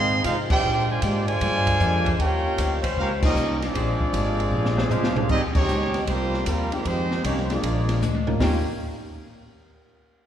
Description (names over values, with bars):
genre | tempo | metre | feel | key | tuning
jazz, big band swing | 154 BPM | 4/4 | swing 67% on 8ths | Eb mixolydian from 5.3 s | A4 = 436 Hz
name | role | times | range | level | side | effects
warm trumpet section | melody | 0.0-8.7 s | G3 to C6 | -26 LUFS | equal | none
mellow trombone section | second line | 0.0-8.6 s | G2 to Ab4 | -30 LUFS | right 3 dB | none
dark upright piano | accompaniment | 0.0-8.6 s | Ab3 to C5 | -35 LUFS | left 3 dB | none
picked swing-style acoustic guitar | accompaniment | 0.0-8.6 s | Ab2 to C5 | -34 LUFS | left 3 dB | none
warm saxophone section | sustained chords | 0.0-5.3 s | G3 to C5 | -34 LUFS | left 4 dB | none
upright bass | bass | 0.0-8.6 s | Ab1 to C3 | -26 LUFS | equal | none
open jazz drum kit | drums | 0.2-8.5 s | crash cymbal, hi-hat, kick drum, ride cymbal, snare drum, toms | -27 LUFS | equal | none
room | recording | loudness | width
wet scoring stage reverb, RT60 1.9 s | recorded in a church or concert hall | -20 LUFS | side -10 dB against mid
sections
0.0-5.3 A section; 5.3-8.4 B section; 8.4-10.0 C section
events
band accent 0.4, 3.2, 5.5; drum fill 4.5-5.3, 8.0-8.4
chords
0.0 Fm7; 0.6 Bb13; 2.2 Eb13; 3.7 Bb13; 5.3 Abmaj7; 6.1 C7sus4; 6.8 Fm9; 7.6 Bb7; 8.4 Eb9